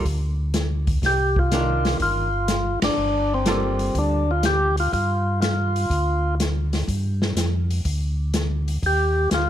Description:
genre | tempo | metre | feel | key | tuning
soul jazz organ trio | 123 BPM | 4/4 | swing 69% on 8ths | G minor | A4 = 440 Hz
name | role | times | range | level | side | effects
archtop guitar, miked and amplified | accompaniment | 0.0-4.2 s | Eb3 to A4 | -28 LUFS | right 3 dB | none
mellow tonewheel organ | bass | 0.1-9.5 s | G1 to G2 | -23 LUFS | equal | slow rotary speaker
open jazz drum kit | drums | 0.1-9.5 s | hi-hat, kick drum, ride cymbal, snare drum | -26 LUFS | left 1 dB | none
percussive tonewheel organ | melody | 1.1-9.5 s | C4 to G4 | -22 LUFS | left 1 dB | slow rotary speaker
room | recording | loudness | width
light reverb | none | -20 LUFS | side -11 dB against mid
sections
0.0-9.5 A section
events
band accent 2.7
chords
0.0 N.C.; 1.0 Cm9; 3.0 Gm9; 8.8 Eb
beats
0.06 0.54 | 1.03 1.52 2.00 2.49 | 2.98 3.46 3.95 4.44 | 4.93 5.41 5.90 6.39 | 6.88 7.36 7.85 8.34 | 8.82 9.31

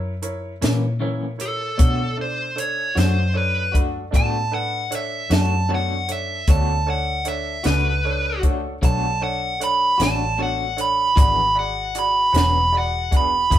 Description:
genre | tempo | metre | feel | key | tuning
slow blues | 51 BPM (dotted quarters) | 12/8 | straight | unclear | A4 = 440 Hz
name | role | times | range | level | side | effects
bright baby grand piano | accompaniment | 0.0-13.6 s | D4 to E5 | -31 LUFS | right 3 dB | none
vintage muted fingered electric bass | bass | 0.0-13.6 s | E1 to B2 | -24 LUFS | left 1 dB | none
compact cocktail drum kit | drums | 0.2-13.6 s | hi-hat, kick drum, snare drum | -19 LUFS | equal | none
electric guitar through a small old amp | accompaniment | 0.6-13.6 s | F#2 to G#4 | -29 LUFS | left 3 dB | tremolo
dark smooth lead guitar | melody | 1.4-13.6 s | A4 to B5 | -21 LUFS | right 2 dB | overdrive
room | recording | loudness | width
moderate studio reverb, RT60 0.8 s | band playing live in one room | -18 LUFS | side -12 dB against mid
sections
0.0-13.6 A section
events
lead electric guitar solo 0.0-13.6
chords
0.0 F#7; 1.8 Bm7; 11.2 E7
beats
0.62 | 1.79 2.96 4.13 5.30 | 6.47 7.65 8.82 9.99 | 11.16 12.34 13.51

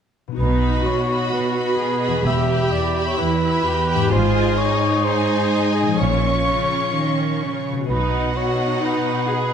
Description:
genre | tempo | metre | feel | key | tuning
cinematic, heroic adventure film score | 128 BPM | 4/4 | straight | unclear | A4 = 439 Hz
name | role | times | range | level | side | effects
concert harp | arpeggios | 0.3-9.5 s | E2 to D#5 | -27 LUFS | left 8 dB | none
dark cor anglais | second line | 0.4-9.5 s | G#4 to E5 | -23 LUFS | equal | none
rich symphonic viola section | accompaniment | 0.4-9.5 s | C#4 to G#4 | -24 LUFS | right 2 dB | none
clear symphonic cello section | bass | 0.4-9.5 s | E2 to D#3 | -24 LUFS | right 2 dB | none
rich symphonic double bass section | bass | 0.4-8.3 s | E1 to B1 | -24 LUFS | right 2 dB | none
dark symphonic violin section | melody | 0.6-9.5 s | F#5 to C#6 | -28 LUFS | left 3 dB | none
warm symphonic violin section | second line | 0.6-9.5 s | D#4 to E5 | -28 LUFS | left 3 dB | none
room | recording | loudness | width
moderate scoring stage reverb, RT60 1.8 s | none | -17 LUFS | side -8 dB against mid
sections
0.4-9.5 A section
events
none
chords
0.4 B; 2.3 Em; 4.1 G#; 6.0 A#m; 7.9 B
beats
| 0.39 0.86 1.33 1.79 | 2.26 2.73 3.20 3.66 | 4.13 4.60 5.06 5.53 | 6.00 6.47 6.95 7.42 | 7.89 8.36 8.83 9.30

